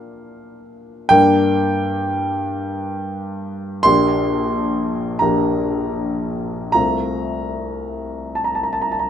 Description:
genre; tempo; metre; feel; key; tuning
classical, romantic nocturne for solo piano; 36-48 BPM (dotted quarters); 12/8; rubato; unclear; A4 = 440 Hz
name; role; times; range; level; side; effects
warm grand piano; solo; 0.0-9.1 s; Bb1 to C6; -17 LUFS; equal; none
room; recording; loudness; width
light reverb; close, detailed microphones; -17 LUFS; side -9 dB against mid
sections
0.0-9.1 A section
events
none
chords
0.0 Bb; 1.1 Gm; 3.9 Gm/Bb; 6.8 F/C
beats
| 1.12 2.41 3.86 5.23 | 6.75 8.35

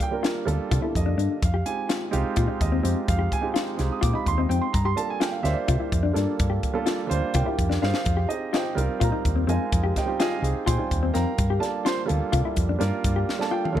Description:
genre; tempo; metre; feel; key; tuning
electric jazz fusion; 253 BPM (eighths); 7/8; straight; F dorian; A4 = 440 Hz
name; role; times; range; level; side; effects
dark baby grand piano; accompaniment; 0.0-13.8 s; D3 to Eb6; -27 LUFS; right 5 dB; none
mellow electric guitar; stabs; 0.0-13.7 s; C4 to G4; -30 LUFS; left 8 dB; lush chorus
crisp fusion drum kit; drums; 0.0-13.8 s; hi-hat, kick drum, snare drum, toms; -28 LUFS; equal; none
hollow-body short-scale fingered electric bass; bass; 0.5-13.8 s; C2 to C3; -25 LUFS; equal; none
room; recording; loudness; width
light reverb, small room ambience; none; -22 LUFS; side -11 dB against mid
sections
0.0-13.8 A section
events
drum fill 7.7-8.1, 13.3-13.8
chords
0.0 Gm9; 1.4 Fm9; 4.7 Gm9; 8.1 Fm9; 11.4 Gm9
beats
0.23 0.47 0.70 0.94 1.18 | 1.42 1.65 1.89 2.13 2.37 2.60 2.84 | 3.08 3.31 3.55 3.79 4.03 4.26 4.50 | 4.74 4.97 5.21 5.45 5.69 5.92 6.16 | 6.40 6.64 6.87 7.11 7.35 7.58 7.82 | 8.06 8.30 8.53 8.77 9.01 9.25 9.48 | 9.72 9.96 10.20 10.43 10.67 10.91 11.15 | 11.38 11.62 11.86 12.10 12.33 12.57 12.81 | 13.05 13.28 13.52 13.76

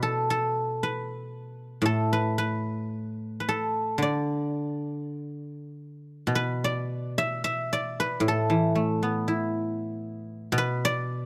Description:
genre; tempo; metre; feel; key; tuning
chinese traditional, Chinese solo plucked strings; 52-60 BPM; 2/4; rubato; unclear; A4 = 439 Hz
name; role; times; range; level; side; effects
guzheng; solo; 0.0-11.3 s; A2 to E5; -28 LUFS; equal; none
room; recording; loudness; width
small room reverb; dry, close 1970s-style studio recording; -28 LUFS; mono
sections
0.0-6.3 A section; 6.3-11.3 B section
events
none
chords
none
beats
0.81 | 1.86 2.94 | 4.03 5.15 | 6.30 7.41 | 8.49 9.54 | 10.54

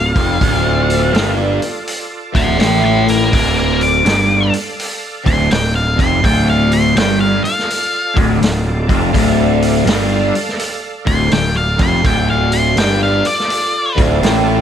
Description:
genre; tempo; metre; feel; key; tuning
blues rock power trio and southern rock; 82 BPM; 4/4; swing 66% on 8ths; D minor; A4 = 441 Hz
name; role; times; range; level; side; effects
octave-fuzz lead guitar; melody; 0.0-14.0 s; D5 to D6; -18 LUFS; left 2 dB; distortion
tonewheel organ; sustained chords; 0.0-14.6 s; F4 to F5; -25 LUFS; right 3 dB; overdrive, chorus vibrato, slow rotary speaker
cranked stack guitar; riff; 0.0-14.6 s; D2 to A2; -16 LUFS; left 1 dB; overdrive, phaser
fuzz picked electric bass; bass; 0.0-14.6 s; D1 to A1; -17 LUFS; equal; overdrive
vintage drum kit; drums; 0.2-14.5 s; hi-hat, kick drum, snare drum; -19 LUFS; equal; none
room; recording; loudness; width
light reverb; none; -12 LUFS; side -9 dB against mid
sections
0.0-14.6 A section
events
lead electric guitar solo 0.0-14.6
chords
0.0 Dm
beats
| 0.41 1.14 1.87 2.60 | 3.33 4.05 4.78 5.51 | 6.24 6.96 7.69 8.42 | 9.14 9.87 10.60 11.32 | 12.05 12.78 13.51 14.23

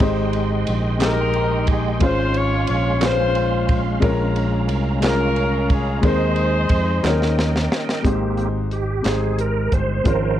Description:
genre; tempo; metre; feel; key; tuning
slow gospel; 60 BPM (dotted quarters); 6/8; straight; Ab major; A4 = 440 Hz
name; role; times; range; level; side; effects
warm upright piano; accompaniment; 0.0-10.4 s; Ab2 to C6; -23 LUFS; left 3 dB; none
bright tonewheel organ; sustained chords; 0.0-10.4 s; Eb3 to C6; -25 LUFS; right 4 dB; fast rotary speaker, chorus vibrato
fingered electric bass; bass; 0.0-10.4 s; G1 to F2; -22 LUFS; right 1 dB; none
crisp fusion drum kit; drums; 0.0-10.2 s; hi-hat, kick drum, ride cymbal, snare drum; -23 LUFS; equal; none
warm horn section; melody; 1.0-7.4 s; Db4 to Db5; -22 LUFS; left 2 dB; none
group handclap; percussion; 1.0-9.4 s; none; -30 LUFS; right 5 dB; none
room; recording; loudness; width
light reverb, small room ambience; worn, warbling old tape, cassette tape, warbly pitch drift; -17 LUFS; side -12 dB against mid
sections
0.0-8.0 A section; 8.0-10.4 B section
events
drum fill 7.0-8.0; tonewheel organ solo 8.0-10.4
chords
0.0 Abmaj7; 2.0 Dbmaj7/Ab; 4.0 Bbm7; 6.0 Ab/Eb; 7.0 Eb7; 8.0 Abmaj7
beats
| 0.01 1.01 | 2.02 3.02 | 4.02 5.03 | 6.03 7.04 | 8.04 9.05 | 10.05

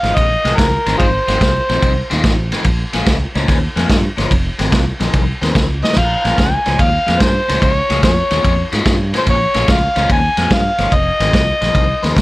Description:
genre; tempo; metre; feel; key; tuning
electric blues shuffle; 145 BPM; 4/4; swing 68% on 8ths; unclear; A4 = 440 Hz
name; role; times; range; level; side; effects
overdriven harmonica; melody; 0.0-2.1, 5.8-12.2 s; F4 to Ab5; -17 LUFS; equal; none
overdriven semi-hollow guitar; riff; 0.0-12.2 s; F2 to Db4; -20 LUFS; left 3 dB; phaser
fingered electric bass; bass; 0.0-12.2 s; F1 to Ab2; -19 LUFS; equal; none
vintage drum kit; drums; 0.0-12.2 s; crash cymbal, kick drum, ride cymbal, snare drum; -16 LUFS; equal; none
room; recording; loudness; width
light reverb; none; -12 LUFS; side -19 dB against mid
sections
0.0-12.2 A section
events
drum fill 5.8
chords
0.0 Fm7; 2.7 Bbm7; 4.3 Fm7; 6.0 Bbm7; 10.9 Fm7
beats
0.17 0.58 | 0.99 1.41 1.82 2.24 | 2.65 3.07 3.48 3.89 | 4.31 4.72 5.14 5.55 | 5.96 6.38 6.79 7.21 | 7.62 8.03 8.45 8.86 | 9.27 9.69 10.10 10.51 | 10.92 11.34 11.75 12.16

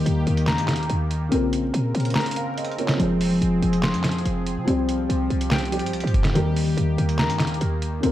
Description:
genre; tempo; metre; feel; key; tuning
hip hop, trap; 143 BPM; 4/4; half-time; unclear; A4 = 441 Hz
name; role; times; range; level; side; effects
dark concert grand piano; accompaniment; 0.0-8.1 s; Db3 to F5; -30 LUFS; right 2 dB; none
sweeping resonant pad; sustained chords; 0.0-8.1 s; Db3 to Bb4; -30 LUFS; right 1 dB; chorus
mellow electric guitar; arpeggios; 0.0-8.1 s; Eb3 to C6; -24 LUFS; left 2 dB; spring reverb, tape echo
short 808-style bass; bass; 0.0-8.1 s; F1 to C3; -26 LUFS; equal; none
lo-fi sampler-style drum kit; drums; 0.1-8.1 s; handclaps, hi-hat, kick drum, snare drum; -26 LUFS; equal; none
room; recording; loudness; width
little or no reverb; vinyl crackle; -20 LUFS; side -13 dB against mid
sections
0.0-8.1 A section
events
kick muted 2.2-3.0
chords
0.0 Eb; 1.3 Bbmadd9; 3.0 Fm; 4.7 Csus4; 6.4 Eb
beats
0.06 0.48 0.90 | 1.32 1.74 2.16 2.58 | 3.00 3.42 3.83 4.25 | 4.67 5.09 5.51 5.93 | 6.35 6.77 7.19 7.61 | 8.03

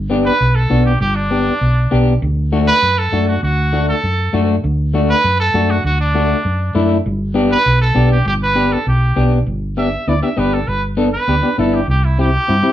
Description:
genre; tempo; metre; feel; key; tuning
latin, cumbia; 199 BPM; 4/4; straight; G major; A4 = 440 Hz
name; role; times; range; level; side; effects
hollow-body short-scale fingered electric bass; bass; 0.0-12.6 s; G1 to G2; -16 LUFS; equal; none
clean electric guitar; accompaniment; 0.1-12.7 s; A3 to A4; -17 LUFS; left 2 dB; harmonic tremolo
clear trumpet; melody; 0.3-12.7 s; D4 to E5; -18 LUFS; right 2 dB; none
room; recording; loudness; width
wet studio reverb, RT60 0.5 s; heard from further back in the room; -13 LUFS; side -12 dB against mid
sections
0.0-9.5 A section; 9.5-12.7 B section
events
trumpet solo 9.5-12.7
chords
0.0 G; 2.2 D; 7.1 G; 11.9 C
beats
0.10 0.41 0.71 | 1.01 1.31 1.61 1.92 | 2.22 2.52 2.83 3.13 | 3.43 3.73 4.04 4.34 | 4.64 4.94 5.25 5.55 | 5.85 6.15 6.45 6.75 | 7.06 7.36 7.66 7.96 | 8.27 8.57 8.87 9.17 | 9.47 9.77 10.07 10.38 | 10.68 10.98 11.28 11.59 | 11.89 12.19 12.49

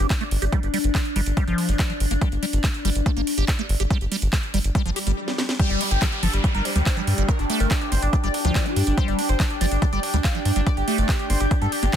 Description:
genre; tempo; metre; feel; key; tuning
psychedelic trance; 142 BPM; 4/4; straight; unclear; A4 = 439 Hz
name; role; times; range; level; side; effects
formant-sweep wobble bass; second line; 0.0-0.1, 6.7-8.6 s; C4 to F4; -41 LUFS; equal; none
evolving wavetable pad; sustained chords; 0.0-12.0 s; D4; -32 LUFS; left 4 dB; chorus, built-in reverb, phaser, sidechain pumping
liquid acid bass; riff; 0.0-12.0 s; F3 to G4; -29 LUFS; moving between left 7 dB and right 8 dB; phaser, auto-pan, cassette tape, sidechain pumping, tape echo
round analog bass; bass; 0.0-11.9 s; G1 to G2; -22 LUFS; equal; none
techno drum kit; drums; 0.0-12.0 s; handclaps, hi-hat, snare drum; -29 LUFS; right 2 dB; none
electronic kick drum; drums; 0.1-12.0 s; none; -22 LUFS; equal; none
swell and downlifter; sound effects; 4.9-9.0 s; none; -31 LUFS; right 1 dB; none
overdriven synth lead; melody; 5.6-12.0 s; G3 to F5; -28 LUFS; equal; distortion, chorus, phaser, sidechain pumping, tape echo
airy breathy pad; texture; 5.9-12.0 s; D4 to G5; -32 LUFS; equal; chorus, sidechain pumping
room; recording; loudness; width
digital ambience; dense, heavily limited modern master; -20 LUFS; side -9 dB against mid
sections
0.0-5.6 A section; 5.6-12.0 B section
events
swell 4.9-5.6; break 5.2-5.6; drum fill 5.3-5.6; drop 5.6-12.0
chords
0.0 G5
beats
0.10 | 0.53 0.95 1.37 1.79 | 2.21 2.64 3.06 3.48 | 3.90 4.33 4.75 5.17 | 5.59 6.02 6.44 6.86 | 7.29 7.71 8.13 8.55 | 8.98 9.40 9.82 10.24 | 10.67 11.09 11.51 11.93

